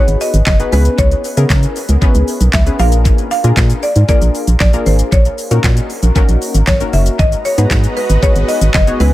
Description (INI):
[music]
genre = dance-pop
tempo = 116 BPM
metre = 4/4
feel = straight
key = G# minor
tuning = A4 = 440 Hz
[part]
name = buzzing marimba with hard mallets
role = melody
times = 0.0-9.1 s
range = B4 to E#5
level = -19 LUFS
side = equal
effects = dub echo
[part]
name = funky polysynth comp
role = accompaniment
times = 0.0-9.1 s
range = A#3 to C#5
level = -20 LUFS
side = left 3 dB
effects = chorus, dub echo
[part]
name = organ-like FM bass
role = bass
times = 0.1-9.1 s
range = F#1 to C#3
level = -12 LUFS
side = equal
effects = sidechain pumping
[part]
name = pop drum kit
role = drums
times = 0.1-9.1 s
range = handclaps, hi-hat, kick drum, shaker, snare drum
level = -14 LUFS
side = equal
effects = none
[part]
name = supersaw pad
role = sustained chords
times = 7.2-9.1 s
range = C#3 to A#5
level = -24 LUFS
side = right 1 dB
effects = sidechain pumping
[sound]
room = little or no reverb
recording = echo-heavy mix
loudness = -10 LUFS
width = side -16 dB against mid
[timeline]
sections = 0.0-9.1 A section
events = none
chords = 0.0 G#m7; 0.7 C#m7; 2.8 A#7; 5.1 D#m7/A#; 7.2 G#m7